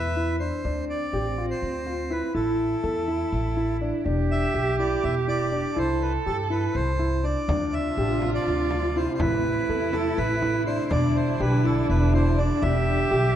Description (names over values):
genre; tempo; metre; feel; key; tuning
contemporary instrumental, chamber music in an uneven meter; 245 BPM (eighths); 7/8; straight; E phrygian; A4 = 442 Hz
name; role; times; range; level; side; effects
accordion; melody; 0.0-13.4 s; A4 to E5; -30 LUFS; right 1 dB; none
dark cello; second line; 0.0-13.4 s; C4 to A4; -29 LUFS; right 4 dB; none
dark concert grand piano; arpeggios; 0.0-13.3 s; D4 to A4; -28 LUFS; left 2 dB; none
upright bass; bass; 0.0-13.4 s; E1 to G2; -26 LUFS; equal; none
muted studio string section; sustained chords; 7.5-13.4 s; C3 to E4; -32 LUFS; left 2 dB; none
frame drum; percussion; 7.5-12.9 s; none; -32 LUFS; equal; none
room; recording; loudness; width
wet recital hall reverb, RT60 1.6 s; dark, warm production; -22 LUFS; side -10 dB against mid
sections
0.6-13.4 A section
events
none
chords
0.0 E7(no3); 0.6 Dm7; 2.3 A5; 4.1 Em7; 5.8 C6; 7.5 Dm7; 9.2 Am; 10.9 Em7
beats
0.15 0.40 | 0.64 0.88 1.13 1.37 1.61 1.86 2.10 | 2.34 2.59 2.83 3.08 3.32 3.56 3.81 | 4.05 4.30 4.54 4.79 5.03 5.28 5.52 | 5.76 6.01 6.26 6.50 6.75 6.99 7.24 | 7.48 7.73 7.97 8.22 8.46 8.71 8.96 | 9.20 9.45 9.69 9.94 10.18 10.43 10.67 | 10.91 11.16 11.40 11.65 11.89 12.14 12.38 | 12.62 12.87 13.11